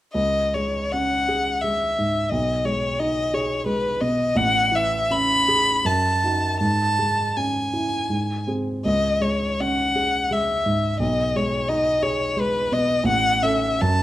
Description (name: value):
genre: classical, romantic duo for violin and grand piano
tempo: 74-90 BPM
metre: 3/4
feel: rubato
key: C# minor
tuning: A4 = 440 Hz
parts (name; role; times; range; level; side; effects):
- rich violin; melody; 0.1-14.0 s; B4 to B5; -21 LUFS; left 1 dB; none
- dark grand piano; accompaniment; 0.1-14.0 s; A1 to A4; -24 LUFS; right 1 dB; none
room: moderate recital hall reverb, RT60 1.3 s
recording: close, detailed microphones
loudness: -19 LUFS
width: side -14 dB against mid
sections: 0.1-14.0 A section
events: none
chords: 0.1 C#m; 2.3 G#m/B; 4.3 Amaj7; 5.8 D#dim/F#; 6.6 C#m/G#; 8.1 G#; 8.8 C#m; 11.0 G#m/B; 13.1 A